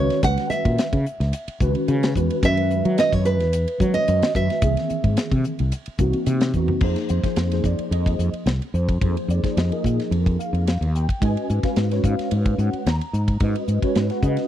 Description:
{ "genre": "electric jazz fusion", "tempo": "109 BPM", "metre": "4/4", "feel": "straight", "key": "unclear", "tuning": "A4 = 440 Hz", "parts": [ { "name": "nylon-string guitar", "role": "melody", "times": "0.0-6.2 s", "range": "B4 to F#5", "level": "-23 LUFS", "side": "right 3 dB", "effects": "slapback echo" }, { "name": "mellow tine electric piano", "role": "accompaniment", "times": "0.0-14.5 s", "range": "D#3 to Bb5", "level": "-25 LUFS", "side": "equal", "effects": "medium stereo tremolo, ensemble chorus" }, { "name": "fretless electric bass", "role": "bass", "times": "0.0-14.4 s", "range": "C2 to F#3", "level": "-21 LUFS", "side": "equal", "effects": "none" }, { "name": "modern studio drum kit", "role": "drums", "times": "0.1-14.5 s", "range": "crash cymbal, hi-hat, kick drum, ride cymbal, snare drum, toms", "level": "-24 LUFS", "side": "equal", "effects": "none" } ], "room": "small room ambience", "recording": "dry, close 1970s-style studio recording", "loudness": "-19 LUFS", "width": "side -11 dB against mid", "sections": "0.0-6.8 A section; 6.8-14.5 B section", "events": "drum fill 6.5", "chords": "0.0 C#m7; 2.4 F#7sus4; 4.6 C7alt; 6.8 Fm7; 11.2 Abm11", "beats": "| 0.23 0.78 1.33 1.88 | 2.43 2.98 3.53 4.08 | 4.62 5.17 5.72 6.27 | 6.82 7.37 7.92 8.47 | 9.02 9.57 10.12 10.67 | 11.21 11.77 12.31 12.86 | 13.41 13.96" }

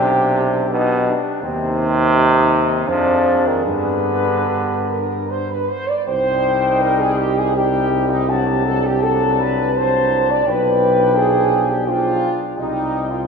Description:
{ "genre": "classical, hymn-like piece for brass band", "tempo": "73-87 BPM", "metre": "3/4", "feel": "rubato", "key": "C minor", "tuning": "A4 = 441 Hz", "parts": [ { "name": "mellow flugelhorn", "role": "melody", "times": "0.0-13.2 s", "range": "C4 to A5", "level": "-22 LUFS", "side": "left 4 dB", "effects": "none" }, { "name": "mellow French horn section", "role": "second line", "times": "0.0-13.3 s", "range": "Eb4 to D5", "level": "-20 LUFS", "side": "right 3 dB", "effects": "none" }, { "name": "bright trombone section", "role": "accompaniment", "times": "0.0-13.1 s", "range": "B3 to Eb4", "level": "-26 LUFS", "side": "left 4 dB", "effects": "none" }, { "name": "clear trombone", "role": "accompaniment", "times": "0.0-13.2 s", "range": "B2 to G3", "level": "-21 LUFS", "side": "right 1 dB", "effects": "none" }, { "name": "mellow tuba", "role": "bass", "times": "0.0-13.3 s", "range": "B1 to G2", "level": "-22 LUFS", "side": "equal", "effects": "none" } ], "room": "wet church reverb, RT60 3.6 s", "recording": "minimal, uncompressed stereo recording", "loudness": "-15 LUFS", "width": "side -5 dB against mid", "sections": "0.0-6.1 A section; 6.1-13.3 B section", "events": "none", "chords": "0.0 G/B; 1.4 Cm/Eb; 2.9 Ddim/F; 3.7 G; 6.1 Cm; 8.3 D7/C; 10.4 G7/B; 12.6 Cm", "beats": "0.01 0.73 | 1.44 2.15 2.90 | 3.68 4.48 5.29 | 6.07 6.82 7.55 | 8.29 9.02 9.73 | 10.45 11.15 11.86 | 12.56 13.26" }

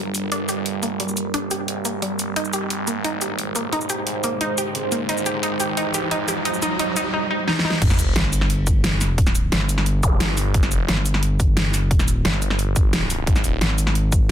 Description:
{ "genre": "dark technical drum and bass", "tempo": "176 BPM", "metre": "4/4", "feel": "straight", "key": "unclear", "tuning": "A4 = 440 Hz", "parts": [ { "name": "deep dark ambient pad", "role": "sustained chords", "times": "0.0-7.1 s", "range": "G3 to C5", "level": "-28 LUFS", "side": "right 3 dB", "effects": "chorus, built-in reverb, vintage 12-bit sampler grit, sidechain pumping" }, { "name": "wide unison pluck", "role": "arpeggios", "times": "0.0-7.7 s", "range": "G3 to G4", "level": "-25 LUFS", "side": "equal", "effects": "sidechain pumping, digital delay" }, { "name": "phased detuned saw bass", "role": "bass", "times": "0.0-8.1, 10.2-13.6 s", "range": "Eb1 to Ab1", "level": "-27 LUFS", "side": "equal", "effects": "phaser, sidechain pumping, high-pass filter" }, { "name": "dubstep drum kit", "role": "drums", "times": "0.1-14.2 s", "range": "crash cymbal, hi-hat, shaker, snare drum", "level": "-24 LUFS", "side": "equal", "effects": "overdrive" }, { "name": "riser, sub drop and zap", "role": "sound effects", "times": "4.5-10.1 s", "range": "none", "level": "-28 LUFS", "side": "equal", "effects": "none" }, { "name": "electronic kick drum", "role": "drums", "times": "7.8-14.2 s", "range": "none", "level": "-19 LUFS", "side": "equal", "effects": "none" }, { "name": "growling FM bass", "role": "bass", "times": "8.2-14.3 s", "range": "F1 to Ab1", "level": "-20 LUFS", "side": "equal", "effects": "none" } ], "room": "light reverb", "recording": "dense, heavily limited modern master", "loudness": "-18 LUFS", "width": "side -10 dB against mid", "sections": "0.0-7.8 A section; 7.8-14.3 B section", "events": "build-up 0.0-7.8; filter sweep on ambient pad 0.0-7.8; filter sweep on synth arpeggio sound 0.0-7.8; riser 4.5-7.1; drum fill 7.5-7.8; drop 7.8-14.3; impact 7.8-9.2", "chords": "0.0 Gm; 2.4 Ab; 7.8 N.C.; 13.3 Ab5", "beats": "0.32 0.66 | 1.00 1.34 1.68 2.02 | 2.36 2.70 3.04 3.38 | 3.73 4.07 4.41 4.75 | 5.09 5.43 5.77 6.11 | 6.45 6.79 7.13 7.48 | 7.82 8.16 8.50 8.84 | 9.18 9.52 9.86 10.20 | 10.54 10.88 11.23 11.57 | 11.91 12.25 12.59 12.93 | 13.27 13.61 13.95 14.29" }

